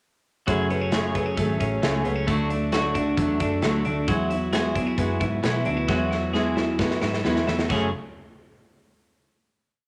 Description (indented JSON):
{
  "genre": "jangly indie pop",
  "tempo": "133 BPM",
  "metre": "4/4",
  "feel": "straight",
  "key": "F# minor",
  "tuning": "A4 = 439 Hz",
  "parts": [
    { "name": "fingerpicked steel-string acoustic guitar", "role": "accompaniment", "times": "0.5-7.9 s", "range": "F#2 to G#4", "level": "-28 LUFS", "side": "equal", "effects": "none" },
    { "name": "twelve-string electric guitar", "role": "arpeggios", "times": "0.5-7.9 s", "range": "F#3 to G#4", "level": "-29 LUFS", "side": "equal", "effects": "none" },
    { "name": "vintage muted picked electric bass", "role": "bass", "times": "0.5-7.9 s", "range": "F#1 to B2", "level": "-32 LUFS", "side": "equal", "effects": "none" },
    { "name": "big rock drum kit", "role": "drums", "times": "0.5-7.8 s", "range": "crash cymbal, hi-hat, kick drum, snare drum", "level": "-31 LUFS", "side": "equal", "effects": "none" }
  ],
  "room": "light reverb",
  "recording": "none",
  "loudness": "-24 LUFS",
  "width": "mono",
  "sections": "0.5-7.7 verse; 7.7-9.5 final chord",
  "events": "drum fill 5.9-7.7",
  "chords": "0.5 F#madd9; 2.3 D; 4.1 Eadd9; 7.7 F#madd9"
}